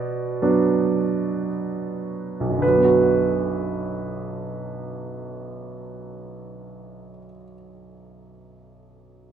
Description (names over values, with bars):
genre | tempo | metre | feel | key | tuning
classical, lyrical solo piano | free time | none | none | B minor | A4 = 440 Hz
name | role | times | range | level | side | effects
warm baby grand piano | solo | 0.0-9.3 s | B1 to D5 | -22 LUFS | right 3 dB | none
room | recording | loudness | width
light reverb | minimal, uncompressed stereo recording | -20 LUFS | side -8 dB against mid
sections
0.0-2.6 A section; 2.6-6.9 B section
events
slowing down 0.0-2.6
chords
0.0 Bm